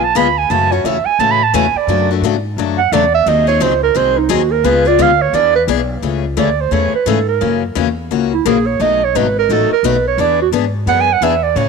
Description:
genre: acoustic string swing (jazz manouche)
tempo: 174 BPM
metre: 4/4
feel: swing 62% on 8ths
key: F# minor, A major from 6.0 s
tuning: A4 = 439 Hz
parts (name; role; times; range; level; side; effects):
- mellow clarinet; melody; 0.0-11.7 s; D#4 to B5; -14 LUFS; right 9 dB; none
- picked steel-string acoustic guitar; accompaniment; 0.0-11.7 s; B2 to G#4; -17 LUFS; left 14 dB; none
- upright bass; bass; 0.0-11.7 s; G#1 to A2; -20 LUFS; left 1 dB; none
room: light reverb, small room reverb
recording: 1960s-style stereo with parts hard left and right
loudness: -12 LUFS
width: side -5 dB against mid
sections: 0.0-6.0 A section; 6.0-11.7 A section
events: clarinet solo 0.0-6.0, 6.0-11.7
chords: 0.5 F#m7; 1.9 Dmaj7/F#; 3.3 G#7; 4.6 C#7; 5.3 E7; 6.0 Amaj7; 7.4 F#7; 8.8 B7; 10.2 E9

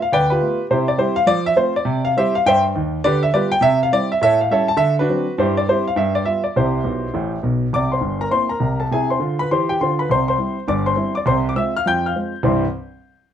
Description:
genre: jazz, stride piano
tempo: 204 BPM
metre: 4/4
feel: swing 63% on 8ths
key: C major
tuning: A4 = 440 Hz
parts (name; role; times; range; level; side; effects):
- clear grand piano; solo; 0.0-12.6 s; G1 to G6; -16 LUFS; equal; none
room: moderate club reverb, RT60 0.6 s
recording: dark, warm production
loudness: -16 LUFS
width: side -9 dB against mid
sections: 0.0-7.7 A section; 7.7-12.4 B section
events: grand piano fill 6.8-7.7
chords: 0.0 G9; 0.7 C; 1.3 F; 1.9 C; 3.0 G7/D; 3.6 C; 4.2 A7; 4.8 D7; 5.4 C/G; 6.0 G7; 6.6 C; 7.7 C7; 8.9 Fm/C; 10.1 C; 11.3 Fm/C; 12.4 C

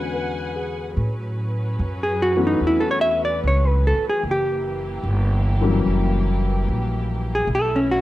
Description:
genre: jazz ballad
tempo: 74 BPM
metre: 4/4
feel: swing 69% on 8ths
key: A major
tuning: A4 = 437 Hz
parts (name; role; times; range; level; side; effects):
- hollow-body jazz guitar; melody; 0.0-8.0 s; C#4 to E5; -20 LUFS; equal; slapback echo
- warm upright piano; accompaniment; 0.0-7.5 s; D3 to B4; -25 LUFS; left 5 dB; none
- muted studio string section; sustained chords; 0.0-8.0 s; E3 to G#5; -31 LUFS; right 1 dB; none
- upright bass; bass; 0.0-8.0 s; F#1 to A2; -22 LUFS; equal; none
room: little or no reverb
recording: dry, close 1970s-style studio recording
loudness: -19 LUFS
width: side -15 dB against mid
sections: 1.0-8.0 A section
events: hollow-body jazz guitar solo 1.0-8.0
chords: 0.0 E13; 1.0 A69; 4.2 F#7b9; 7.5 B9sus4

